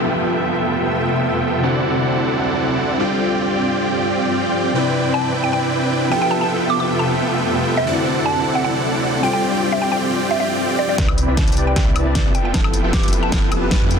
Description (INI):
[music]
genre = future bass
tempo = 154 BPM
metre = 4/4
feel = half-time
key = C major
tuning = A4 = 440 Hz
[part]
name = tine electric piano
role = accompaniment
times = 0.0-14.0 s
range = C3 to E5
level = -24 LUFS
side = left 3 dB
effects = ensemble chorus, sidechain pumping, ping-pong delay
[part]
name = shimmering ambient pad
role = sustained chords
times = 0.0-14.0 s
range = D2 to E5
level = -25 LUFS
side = equal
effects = chorus, built-in reverb, sidechain pumping
[part]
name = supersaw chords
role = riff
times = 0.0-14.0 s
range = B3 to A5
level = -20 LUFS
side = right 1 dB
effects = sidechain pumping, low-pass filter, ping-pong delay
[part]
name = downlifter and riser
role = sound effects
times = 0.0-1.6, 12.5-14.0 s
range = none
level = -31 LUFS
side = right 1 dB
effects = none
[part]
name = mallet-like synth pluck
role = melody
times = 5.1-13.4 s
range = D5 to D6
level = -23 LUFS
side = right 1 dB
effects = chorus, phaser, sidechain pumping, ping-pong delay
[part]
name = saturated sub bass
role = bass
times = 11.0-14.0 s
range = F1 to F2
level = -22 LUFS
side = equal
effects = sidechain pumping
[part]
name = big-room dance drum kit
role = drums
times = 11.0-14.0 s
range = hi-hat, snare drum, woodblock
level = -23 LUFS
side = equal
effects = soft clipping on snare
[part]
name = electronic kick drum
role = drums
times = 11.0-13.8 s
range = none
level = -19 LUFS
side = equal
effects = none
[sound]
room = light reverb, digital ambience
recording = dense, heavily limited modern master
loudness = -16 LUFS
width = side -6 dB against mid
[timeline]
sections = 0.0-11.0 A section; 11.0-14.0 B section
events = build-up 11.0-14.0; drum fill 11.0-14.0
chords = 0.0 Fmaj9#11; 1.6 D9; 3.0 G7sus4; 4.8 Cmaj9; 6.1 Fmaj9#11; 7.9 D9; 9.2 G7sus4; 11.0 Cmaj9; 12.3 Fmaj9#11